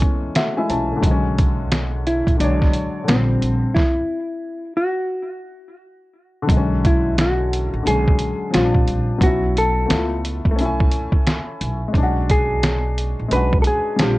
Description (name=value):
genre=lo-fi hip hop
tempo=88 BPM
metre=4/4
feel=swing 64% on 16ths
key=B dorian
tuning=A4 = 444 Hz
part: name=warm upright piano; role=accompaniment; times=0.0-14.2 s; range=C#3 to A5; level=-23 LUFS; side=left 2 dB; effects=none
part: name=trip hop sampler-style drum kit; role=drums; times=0.0-14.2 s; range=hi-hat, kick drum, snare drum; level=-19 LUFS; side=equal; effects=none
part: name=upright bass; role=bass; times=0.7-14.2 s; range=A1 to C#2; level=-22 LUFS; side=equal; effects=none
part: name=hollow-body jazz guitar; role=melody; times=2.1-14.2 s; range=B#3 to B4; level=-22 LUFS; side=equal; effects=none
room=light reverb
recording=worn, warbling old tape, cassette tape, warbly pitch drift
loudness=-17 LUFS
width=side -19 dB against mid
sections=0.0-6.5 A section; 6.5-14.2 B section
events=upright piano fill 0.0-1.0; stop 3.8-6.5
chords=0.0 B13sus4; 1.0 Bm69; 3.1 A#69; 3.8 N.C.; 6.5 Bm69; 8.5 A#69; 9.2 A69/B; 9.9 C#7alt; 10.6 B13sus4; 11.9 Bm69